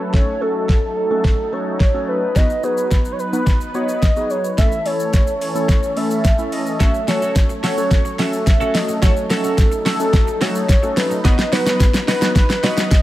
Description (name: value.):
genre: dance-pop.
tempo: 108 BPM.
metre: 4/4.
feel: straight.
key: F# dorian.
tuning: A4 = 442 Hz.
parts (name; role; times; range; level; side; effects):
warm velvety synth lead; melody; 0.0-13.0 s; A4 to E5; -22 LUFS; equal; chorus, dub echo.
filtered supersaw swell; sustained chords; 0.0-13.0 s; E3 to B4; -26 LUFS; right 1 dB; sidechain pumping.
glassy digital keys; accompaniment; 0.1-12.9 s; A3 to C#5; -25 LUFS; left 1 dB; chorus, sidechain pumping.
smooth R&B drum kit; drums; 0.1-13.0 s; hi-hat, kick drum, shaker, snare drum; -16 LUFS; equal; none.
twelve-string electric guitar; riff; 6.8-13.0 s; C#4 to B4; -27 LUFS; right 4 dB; wide subtle chorus.
room: little or no reverb.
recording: none.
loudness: -15 LUFS.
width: side -15 dB against mid.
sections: 0.0-13.0 A section.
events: build-up 0.0-13.0; drum fill 0.0-13.0.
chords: 0.0 F#m; 2.4 B; 4.6 A; 6.8 F#m; 11.2 B.